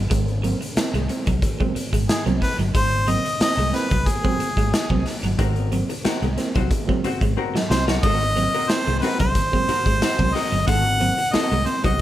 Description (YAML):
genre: funk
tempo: 91 BPM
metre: 4/4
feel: straight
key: Ab mixolydian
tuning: A4 = 440 Hz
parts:
  - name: electric guitar at the edge of break-up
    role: riff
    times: 0.0-12.0 s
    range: Gb3 to Ab3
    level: -29 LUFS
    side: right 3 dB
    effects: none
  - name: barky reed electric piano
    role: stabs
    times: 0.0-12.0 s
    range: Ab2 to C4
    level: -28 LUFS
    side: right 3 dB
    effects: overdrive, spring reverb
  - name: vintage muted fingered electric bass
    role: bass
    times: 0.0-12.0 s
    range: G1 to C2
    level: -24 LUFS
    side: equal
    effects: none
  - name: raw garage drum kit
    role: drums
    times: 0.1-12.0 s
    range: hi-hat, kick drum, snare drum, splash cymbal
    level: -23 LUFS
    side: equal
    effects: none
  - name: bright harmonica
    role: melody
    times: 2.1-12.0 s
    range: Ab4 to Gb5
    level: -23 LUFS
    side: equal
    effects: plate reverb
  - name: vintage hollow-body jazz guitar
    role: accompaniment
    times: 5.4-12.0 s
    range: C4 to C5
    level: -28 LUFS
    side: left 5 dB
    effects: none
room: light reverb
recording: none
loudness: -18 LUFS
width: side -13 dB against mid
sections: 0.0-12.0 A section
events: drum fill 7.4-8.0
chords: 0.0 Ab9